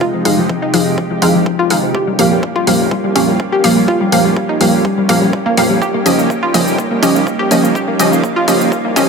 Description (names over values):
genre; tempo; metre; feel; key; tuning
progressive house; 124 BPM; 4/4; straight; unclear; A4 = 439 Hz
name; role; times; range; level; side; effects
lush unison pad; sustained chords; 0.0-9.1 s; C3 to G4; -18 LUFS; right 2 dB; chorus, sidechain pumping
analog pluck; arpeggios; 0.0-9.1 s; F3 to G4; -17 LUFS; left 1 dB; chorus, sidechain pumping, ping-pong delay
dark detuned saw bass; bass; 0.0-9.1 s; F1 to C2; -28 LUFS; right 1 dB; none
electronic kick drum; drums; 0.0-8.8 s; none; -24 LUFS; right 1 dB; high-pass filter on kick
wide unison pluck; stabs; 0.3-9.1 s; F3 to F5; -15 LUFS; equal; sidechain pumping, ping-pong delay
electronic hi-hat and cabasa; drums; 0.3-9.1 s; none; -20 LUFS; equal; none
room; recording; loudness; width
moderate lush hall reverb, RT60 2.1 s; high-pass filter; -11 LUFS; side -5 dB against mid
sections
0.0-9.1 A section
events
build-up 0.0-9.1; filter sweep on synth arpeggio sound 0.0-9.1; drum fill 5.8-9.1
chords
0.0 Fm7; 1.9 Gm7b5/F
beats
| 0.01 0.49 0.98 1.46 | 1.95 2.43 2.91 3.40 | 3.88 4.37 4.85 5.33 | 5.82 6.30 6.79 7.27 | 7.75 8.24 8.72